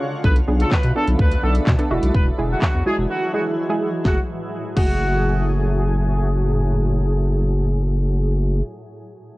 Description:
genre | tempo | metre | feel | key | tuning
dance-pop | 126 BPM | 4/4 | straight | F# minor | A4 = 443 Hz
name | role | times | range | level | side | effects
funky polysynth comp | accompaniment | 0.0-8.6 s | G#3 to A4 | -25 LUFS | right 1 dB | chorus, sidechain pumping, low-pass filter
shimmering ambient pad | sustained chords | 0.0-8.6 s | A2 to G#4 | -27 LUFS | equal | chorus, built-in reverb, sidechain pumping, low-pass filter
clear horn section | melody | 0.2-5.4 s | F#4 to B4 | -26 LUFS | equal | sidechain pumping, low-pass filter
saturated sub bass | bass | 0.2-8.6 s | E1 to B2 | -19 LUFS | equal | sidechain pumping
pop drum kit | drums | 0.2-4.9 s | crash cymbal, handclaps, hi-hat, kick drum, snare drum | -19 LUFS | equal | cassette tape
room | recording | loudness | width
light reverb | home recording on cassette | -17 LUFS | side -20 dB against mid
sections
0.2-4.1 A section; 4.1-7.9 B section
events
break 0.0, 3.1-4.1; filter sweep 0.2-4.1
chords
0.2 Bm7; 1.9 Eadd9; 4.1 F#madd9

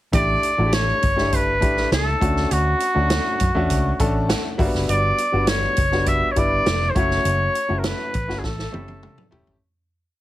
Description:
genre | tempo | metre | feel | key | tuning
uptempo 1960s-style soul | 101 BPM | 4/4 | straight | A mixolydian | A4 = 439 Hz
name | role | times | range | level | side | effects
warm trumpet | melody | 0.1-9.3 s | F#4 to E5 | -22 LUFS | equal | none
bright upright piano | accompaniment | 0.1-9.6 s | G3 to F#5 | -25 LUFS | left 2 dB | none
vintage muted fingered electric bass | bass | 0.1-9.6 s | E1 to F#2 | -24 LUFS | equal | none
swinging big-band drum kit | drums | 0.1-9.6 s | hi-hat, kick drum, snare drum, toms | -24 LUFS | right 1 dB | none
room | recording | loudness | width
light reverb | heavily compressed radio sound, multiband compression | -18 LUFS | side -15 dB against mid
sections
0.1-9.6 A section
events
upright piano fill 4.0-4.9; fade-out 7.3-9.6; drum fill 8.4-9.6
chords
0.1 A7sus4; 2.2 Dmaj7; 4.6 Gmaj7; 7.0 F#m7; 8.4 A7

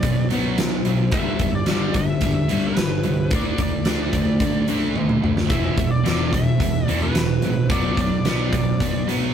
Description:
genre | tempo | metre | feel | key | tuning
hard rock | 109 BPM | 4/4 | straight | E minor | A4 = 440 Hz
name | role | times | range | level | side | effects
biting lead guitar | melody | 0.0-9.1 s | B4 to E5 | -29 LUFS | left 1 dB | overdrive
overdriven semi-hollow guitar | riff | 0.0-9.3 s | E2 to D4 | -25 LUFS | left 5 dB | none
scooped high-gain guitar | riff | 0.0-9.3 s | E2 to D4 | -23 LUFS | right 4 dB | distortion
growling fingered electric bass | bass | 0.0-9.3 s | E1 to D3 | -28 LUFS | equal | overdrive
huge arena drum kit | drums | 0.0-9.2 s | hi-hat, kick drum, snare drum, toms | -23 LUFS | equal | none
room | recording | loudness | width
moderate studio reverb, RT60 0.6 s | rough rehearsal-room recording | -18 LUFS | side -8 dB against mid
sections
0.0-9.3 A section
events
drum fill 5.0-5.5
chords
0.0 Bm; 1.1 G; 3.3 D5; 5.5 E5; 7.7 Bm

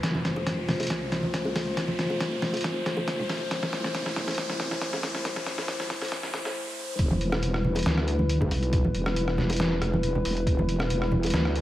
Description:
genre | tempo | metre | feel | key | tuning
deep dubstep | 138 BPM | 4/4 | half-time | E phrygian | A4 = 444 Hz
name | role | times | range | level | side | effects
dark analog pad | sustained chords | 0.0-11.6 s | G3 to C5 | -31 LUFS | left 1 dB | chorus
wobble bass | bass | 0.0-11.6 s | E1 to F2 | -30 LUFS | equal | chorus
electronic kick drum | drums | 0.0-10.6 s | none | -28 LUFS | equal | high-pass filter on kick, small room ambience
trip hop sampler-style drum kit | drums | 0.0-11.6 s | hi-hat, rim click, snare drum | -30 LUFS | equal | small room ambience
riser | sound effects | 0.0-7.0 s | none | -36 LUFS | equal | none
congas and bongos | percussion | 0.1-11.3 s | none | -32 LUFS | right 1 dB | dub echo
room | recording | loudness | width
light reverb | vinyl crackle, high-pass filter | -25 LUFS | side -14 dB against mid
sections
0.0-7.0 A section; 7.0-11.6 B section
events
build-up 0.0-7.0; drum fill 0.0-6.6; riser 0.0-7.0; filter sweep 0.0-7.0; break 6.6-7.0; drop 7.0-11.6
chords
0.0 F; 7.0 Em

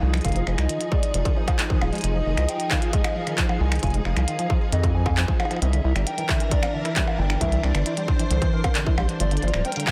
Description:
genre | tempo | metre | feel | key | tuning
IDM | 134 BPM | 4/4 | straight | F dorian | A4 = 440 Hz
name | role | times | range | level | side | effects
warbly nostalgic lead | melody | 0.0-9.9 s | Bb4 to Ab5 | -33 LUFS | equal | lush chorus, tape echo
soft string machine | sustained chords | 0.0-9.9 s | E3 to C5 | -33 LUFS | equal | ensemble chorus, vintage 12-bit sampler grit
round analog bass | bass | 0.0-9.6 s | D1 to F2 | -25 LUFS | equal | tube saturation
deep acid bass | arpeggios | 0.1-9.9 s | D3 to F4 | -34 LUFS | equal | lush chorus, digital delay
glitchy drum kit | drums | 0.1-9.9 s | finger snaps, handclaps, hi-hat, percussion blips | -31 LUFS | equal | soft clipping on snare
electronic kick drum | drums | 0.2-9.9 s | none | -26 LUFS | equal | distortion, overdrive
room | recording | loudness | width
light reverb | dense, heavily limited modern master | -23 LUFS | mono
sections
0.0-9.9 A section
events
none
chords
0.0 Fm7; 5.6 C9; 9.2 Gm7

